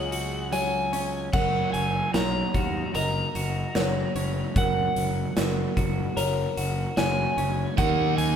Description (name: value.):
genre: post-rock.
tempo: 74 BPM.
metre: 4/4.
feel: straight.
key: F# major.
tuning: A4 = 441 Hz.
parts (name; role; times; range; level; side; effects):
overdriven slide guitar; melody; 0.0-8.4 s; F#5 to A#5; -29 LUFS; equal; none.
felt-muted upright piano; arpeggios; 0.0-8.4 s; A#4 to D#5; -33 LUFS; equal; none.
twelve-string electric guitar; arpeggios; 0.0-8.4 s; C#3 to A#4; -30 LUFS; right 1 dB; none.
fuzz fingered electric bass; bass; 0.0-8.4 s; F#1 to D#2; -30 LUFS; left 1 dB; overdrive.
big rock drum kit; drums; 0.1-8.4 s; crash cymbal, hi-hat, kick drum, snare drum; -29 LUFS; equal; none.
thick fuzz guitar; riff; 7.8-8.4 s; D#3 to D#4; -27 LUFS; right 6 dB; distortion.
room: moderate large studio reverb, RT60 0.8 s.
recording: band playing live in one room.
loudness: -23 LUFS.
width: side -8 dB against mid.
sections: 0.0-1.3 A section; 1.3-8.4 A section.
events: none.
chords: 0.0 C#sus4; 1.3 F#; 7.8 D#m.